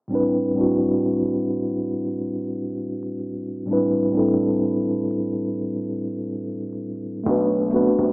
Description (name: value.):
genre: lo-fi hip hop.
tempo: 67 BPM.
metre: 4/4.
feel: swing 62% on 16ths.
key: A dorian.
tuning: A4 = 440 Hz.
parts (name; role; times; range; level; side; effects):
mellow tine electric piano; accompaniment; 0.1-8.1 s; A2 to B4; -20 LUFS; equal; medium stereo tremolo, cassette tape.
fat analog bass; bass; 7.3-8.1 s; B1 to C2; -26 LUFS; equal; none.
boom bap sampler-style drum kit; drums; 7.3-8.1 s; hi-hat, kick drum; -28 LUFS; equal; none.
room: light reverb.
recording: rough home demo mix, vinyl crackle, low-pass filter, small speaker sound.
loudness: -20 LUFS.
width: side -28 dB against mid.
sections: 0.1-8.1 A section.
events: filter sweep 0.1-8.1.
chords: 0.1 Am11; 7.3 Bm7.